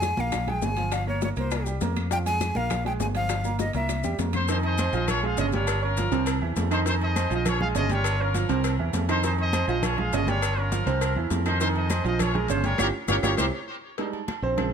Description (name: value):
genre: latin, salsa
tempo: 202 BPM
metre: 4/4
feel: straight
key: F minor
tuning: A4 = 444 Hz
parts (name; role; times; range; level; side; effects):
- breathy bright jazz flute; melody; 0.0-4.2 s; C5 to Ab5; -29 LUFS; left 2 dB; none
- clear baby grand piano; accompaniment; 0.0-14.7 s; C3 to Db6; -29 LUFS; right 7 dB; none
- fingered electric bass; bass; 0.0-14.7 s; G1 to F2; -27 LUFS; left 1 dB; none
- bongos and cowbell; percussion; 0.0-14.7 s; none; -35 LUFS; left 12 dB; none
- claves; percussion; 0.0-14.7 s; none; -40 LUFS; left 7 dB; none
- congas; percussion; 0.0-14.7 s; none; -33 LUFS; left 2 dB; none
- maracas; percussion; 0.0-13.5 s; none; -40 LUFS; left 8 dB; none
- timbales and agogo bells; percussion; 0.0-14.7 s; none; -36 LUFS; right 8 dB; none
- bright trumpet section; melody; 4.3-13.5 s; Db4 to F5; -29 LUFS; left 2 dB; tape echo
room: light reverb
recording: close, detailed microphones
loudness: -23 LUFS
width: side -7 dB against mid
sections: 0.0-4.5 A section; 4.5-14.0 B section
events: drum fill 3.7-4.5, 13.5-14.0; band accent 12.8-14.0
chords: 0.3 Bb5; 0.9 Gm7b5; 1.5 C5; 2.1 Fm; 2.7 Bb5; 3.3 Gm7; 3.9 C7; 4.5 Fm7; 5.1 Bbm7; 5.7 Gm7b5; 6.3 C; 6.9 Fm7; 7.5 Bbm7; 8.1 Gm7b5; 8.6 C; 9.2 Fm7; 9.8 Bbm7; 10.4 Gm7b5; 11.0 C; 11.6 Fm7; 12.2 Bbm7; 12.8 Gm7b5; 13.4 C; 14.0 Bb13sus4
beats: 0.03 0.33 0.62 | 0.92 1.22 1.51 1.81 | 2.11 2.41 2.71 3.00 | 3.30 3.60 3.89 4.19 | 4.49 4.79 5.08 5.38 | 5.68 5.97 6.27 6.57 | 6.86 7.16 7.46 7.75 | 8.05 8.35 8.64 8.94 | 9.24 9.53 9.83 10.13 | 10.42 10.72 11.02 11.31 | 11.61 11.91 12.20 12.50 | 12.79 13.09 13.39 13.69 | 13.98 14.28 14.58